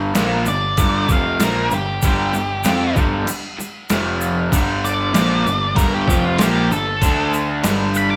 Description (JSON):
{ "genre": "garage rock duo or trio", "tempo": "96 BPM", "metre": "4/4", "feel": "straight", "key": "unclear", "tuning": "A4 = 440 Hz", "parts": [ { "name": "crunchy overdriven guitar", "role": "riff", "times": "0.0-8.2 s", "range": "F2 to F4", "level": "-22 LUFS", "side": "equal", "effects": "none" }, { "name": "fuzz picked electric bass", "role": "bass", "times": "0.0-8.2 s", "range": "F1 to F2", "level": "-28 LUFS", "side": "equal", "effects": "overdrive" }, { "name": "boom bap sampler-style drum kit", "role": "drums", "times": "0.1-7.8 s", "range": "crash cymbal, kick drum, snare drum", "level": "-24 LUFS", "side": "equal", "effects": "overdrive" }, { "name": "egg shaker", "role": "percussion", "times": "0.2-8.1 s", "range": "none", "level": "-33 LUFS", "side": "equal", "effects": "none" }, { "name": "octave-fuzz lead guitar", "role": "melody", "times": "0.5-8.2 s", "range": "F4 to D6", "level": "-24 LUFS", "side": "equal", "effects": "distortion, slapback echo" } ], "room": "moderate large studio reverb, RT60 1.2 s", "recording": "band playing live in one room", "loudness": "-18 LUFS", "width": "mono", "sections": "0.0-8.2 A section", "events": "lead electric guitar solo 0.0-8.2", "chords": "0.0 G5; 3.9 F5; 4.5 G5; 7.0 D5; 7.6 G5" }